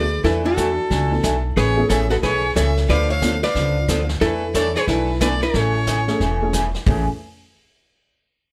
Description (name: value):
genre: country, western swing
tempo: 181 BPM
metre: 4/4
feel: swing 64% on 8ths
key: A major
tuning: A4 = 445 Hz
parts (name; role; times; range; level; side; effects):
- archtop guitar, miked and amplified; melody; 0.0-6.5 s; D4 to E5; -24 LUFS; equal; none
- clear fiddle; second line; 0.0-6.5 s; A4 to F5; -28 LUFS; equal; none
- picked acoustic archtop guitar; accompaniment; 0.0-7.0 s; A2 to A4; -28 LUFS; equal; none
- warm upright piano; accompaniment; 0.0-7.1 s; A3 to A4; -27 LUFS; equal; none
- upright bass; bass; 0.0-7.1 s; E1 to E2; -24 LUFS; equal; none
- vintage brush drum kit; drums; 0.2-7.1 s; brushed snare drum, hi-hat, kick drum, snare drum, toms; -28 LUFS; equal; none
room: moderate studio reverb, RT60 0.7 s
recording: none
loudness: -19 LUFS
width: mono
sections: 0.0-6.9 A section; 6.9-8.2 B section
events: none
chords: 0.2 E7sus4; 1.6 Amaj9; 2.9 Dm6; 4.2 E7sus4; 5.5 Amaj7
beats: | 0.24 0.57 0.90 1.23 | 1.56 1.90 2.23 2.56 | 2.89 3.22 3.55 3.88 | 4.21 4.55 4.88 5.21 | 5.54 5.87 6.20 6.53 | 6.87